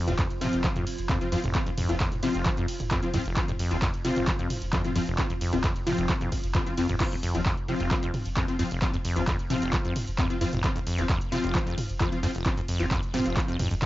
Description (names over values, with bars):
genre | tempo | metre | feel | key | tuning
driving peak-time techno | 132 BPM | 4/4 | straight | unclear | A4 = 439 Hz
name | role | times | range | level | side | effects
acid bass, saw | riff | 0.0-13.9 s | F1 to F3 | -31 LUFS | equal | sidechain pumping, cassette tape, tape echo
metallic inharmonic drone | drone | 0.0-7.0 s | F3 | -43 LUFS | right 4 dB | none
rave stab | stabs | 0.1-13.9 s | F3 to F4 | -30 LUFS | left 2 dB | chorus, built-in reverb, sidechain pumping, cassette tape, tape echo
warm sub bass | bass | 0.1-13.8 s | F1 | -37 LUFS | equal | sidechain pumping, low-pass filter
punchy analog drum machine | drums | 0.1-13.9 s | crash cymbal, handclaps, hi-hat, ride cymbal, toms | -32 LUFS | right 1 dB | none
electronic kick drum | drums | 0.2-13.9 s | none | -29 LUFS | equal | none
room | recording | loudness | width
light reverb | home recording on cassette, nothing above 7.6 kHz | -24 LUFS | side -16 dB against mid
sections
0.0-7.0 A section; 7.0-13.9 A section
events
drop 0.0-7.0, 7.0-13.9; band accent 6.5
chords
0.0 F5